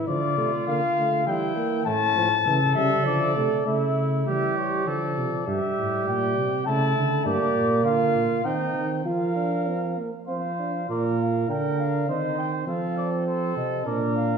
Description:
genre	classical, imitative canzona for brass ensemble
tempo	100 BPM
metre	3/4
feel	straight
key	D minor, Bb major from 7.2 s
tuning	A4 = 435 Hz
part	dark cornet	melody	0.0-14.4 s	C5 to A5	-27 LUFS	left 6 dB	none
part	mellow trumpet	second line	0.0-14.4 s	C#4 to C5	-29 LUFS	right 4 dB	none
part	dark trombone	accompaniment	0.0-14.4 s	E3 to F4	-27 LUFS	right 3 dB	none
part	dark bass trombone	bass	0.0-14.4 s	G2 to F3	-28 LUFS	right 1 dB	none
room	wet recital hall reverb, RT60 1.5 s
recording	recorded in a church or concert hall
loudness	-22 LUFS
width	side -6 dB against mid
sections	0.1-3.7 A section; 3.7-10.9 B section; 10.9-14.4 A section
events	none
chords	0.1 Dm; 1.3 Edim; 1.9 A; 3.1 Dm; 3.7 A/C#; 4.9 Dm; 5.5 Edim/G; 6.7 A/C#; 7.2 Gm; 8.4 Cm/Eb; 9.1 Fsus4; 10.3 F5; 10.9 Bb; 12.1 Cm/Eb; 12.7 F; 13.9 Bb

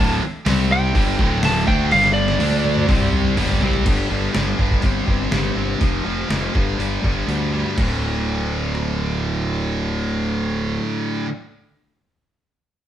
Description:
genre	hard rock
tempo	123 BPM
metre	4/4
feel	straight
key	D minor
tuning	A4 = 439 Hz
part	lightly driven lead guitar	melody	0.0-3.1 s	D5 to A5	-20 LUFS	right 1 dB	none
part	distorted electric guitar	riff	0.0-11.3 s	D2 to D4	-25 LUFS	left 4 dB	distortion
part	distorted electric guitar	riff	0.0-3.9 s	D2 to D4	-26 LUFS	equal	distortion
part	scooped high-gain guitar	riff	0.0-11.3 s	D2 to D4	-26 LUFS	right 5 dB	distortion
part	fuzz picked electric bass	bass	0.0-10.8 s	D1 to D2	-23 LUFS	equal	overdrive
part	trip hop sampler-style drum kit	drums	0.5-8.9 s	crash cymbal, hi-hat, kick drum, rim click, snare drum, toms	-22 LUFS	equal	none
room	moderate stone room reverb, RT60 0.9 s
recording	band playing live in one room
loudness	-17 LUFS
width	side -11 dB against mid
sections	0.0-3.9 A section; 3.9-7.8 B section; 7.8-11.7 C section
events	lead electric guitar solo 0.0-3.9; drum fill 1.9-3.9; kick and snare drop out 7.3-7.8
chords	0.5 C5; 0.9 D5; 1.9 G5; 2.4 D5; 2.9 C5; 3.4 Gsus4; 3.9 G5; 4.8 C5/G; 5.8 F5; 6.5 G5; 7.8 D5

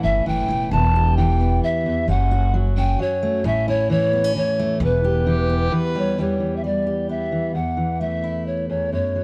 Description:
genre	acoustic folk duo or small band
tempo	132 BPM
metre	3/4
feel	straight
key	E dorian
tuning	A4 = 440 Hz
part	breathy mellow polished pan flute	melody	0.0-9.2 s	B4 to A5	-25 LUFS	equal	plate reverb
part	fingerpicked steel-string acoustic guitar	accompaniment	0.0-9.2 s	E2 to G4	-25 LUFS	equal	none
part	upright bass	bass	0.0-5.7 s	E1 to A1	-23 LUFS	equal	none
part	warm fiddle	second line	5.3-6.2 s	G4 to B4	-30 LUFS	equal	none
room	light reverb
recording	dark, warm production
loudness	-21 LUFS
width	mono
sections	0.0-6.2 A section; 6.2-9.2 B section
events	none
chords	0.0 A; 0.7 Em; 2.1 F#m; 3.4 A; 4.8 Em; 7.5 A5/E

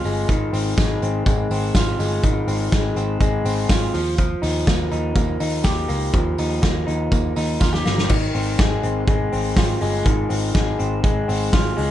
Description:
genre	jangly indie pop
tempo	123 BPM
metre	4/4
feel	straight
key	Ab major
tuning	A4 = 441 Hz
part	electric guitar through a small old amp	arpeggios	0.0-11.9 s	Eb3 to G4	-23 LUFS	left 1 dB	none
part	vintage muted picked electric bass	bass	0.0-11.9 s	G1 to Eb2	-24 LUFS	equal	none
part	loose indie drum kit	drums	0.0-11.9 s	crash cymbal, hi-hat, kick drum, snare drum	-21 LUFS	equal	gated reverb
part	tambourine	percussion	0.0-8.0 s	none	-39 LUFS	right 13 dB	none
room	light reverb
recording	nothing above 10.7 kHz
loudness	-18 LUFS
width	side -12 dB against mid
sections	0.0-8.1 A section; 8.1-11.9 A section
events	drum fill 7.6-8.1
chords	0.3 Ab6; 3.9 Ebadd9; 8.1 Ab6

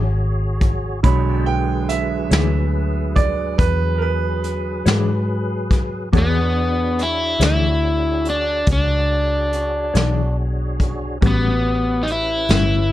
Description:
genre	slow blues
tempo	47 BPM (dotted quarters)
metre	12/8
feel	straight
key	E mixolydian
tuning	A4 = 440 Hz
part	mellow electric guitar	accompaniment	0.0-12.8 s	A2 to C#5	-24 LUFS	left 6 dB	tremolo
part	tonewheel organ	sustained chords	0.0-12.9 s	F#3 to A5	-29 LUFS	left 1 dB	slow rotary speaker, chorus vibrato
part	vintage muted fingered electric bass	bass	0.0-12.9 s	G1 to G#2	-20 LUFS	equal	none
part	vintage brush drum kit	drums	0.6-12.7 s	hi-hat, kick drum, snare drum	-19 LUFS	equal	none
part	bright concert grand piano	accompaniment	1.0-12.9 s	D3 to B5	-25 LUFS	right 7 dB	none
part	overdriven semi-hollow guitar	melody	6.2-12.9 s	B3 to E4	-20 LUFS	left 1 dB	none
room	light reverb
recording	dark, warm production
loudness	-16 LUFS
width	side -14 dB against mid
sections	0.0-6.1 A section; 6.1-12.9 B section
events	grand piano solo 0.0-6.1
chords	0.0 E13; 11.2 A13

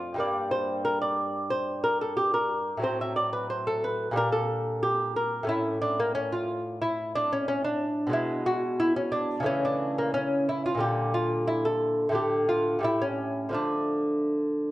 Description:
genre	classical, baroque-style dance for lute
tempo	90 BPM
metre	4/4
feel	rubato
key	unclear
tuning	A4 = 441 Hz
part	lute	solo	0.0-14.7 s	F2 to E5	-25 LUFS	equal	none
room	wet recital hall reverb, RT60 1.5 s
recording	dark, warm production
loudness	-25 LUFS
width	side -16 dB against mid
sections	0.0-14.7 A section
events	none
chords	0.2 Gm; 2.8 F#dim/A; 4.2 Gm/Bb; 5.5 A; 8.1 Bm69; 9.5 A/C#; 10.8 Gm/Bb; 12.2 Dm/A; 12.8 A7; 13.6 Dm

